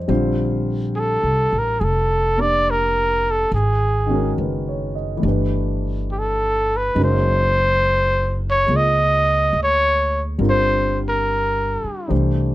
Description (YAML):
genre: jazz ballad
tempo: 70 BPM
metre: 4/4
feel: swing 68% on 8ths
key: unclear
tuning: A4 = 442 Hz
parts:
  - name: warm grand piano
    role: accompaniment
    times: 0.0-12.5 s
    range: D3 to Eb5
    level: -25 LUFS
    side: left 1 dB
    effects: none
  - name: upright bass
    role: bass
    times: 0.0-12.5 s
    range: F1 to D2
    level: -22 LUFS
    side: equal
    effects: none
  - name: breathy trumpet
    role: melody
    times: 1.0-12.1 s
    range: G4 to Eb5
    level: -18 LUFS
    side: equal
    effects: none
room: little or no reverb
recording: close, detailed microphones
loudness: -17 LUFS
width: side -16 dB against mid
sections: 0.0-12.5 A section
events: none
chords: 0.1 Bbmaj9; 3.5 Absus2; 5.2 G; 7.0 Gbmaj9; 10.4 Gm7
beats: | 0.10 0.95 1.81 2.67 | 3.52 4.38 5.24 6.11 | 6.97 7.83 8.69 9.54 | 10.40 11.26 12.11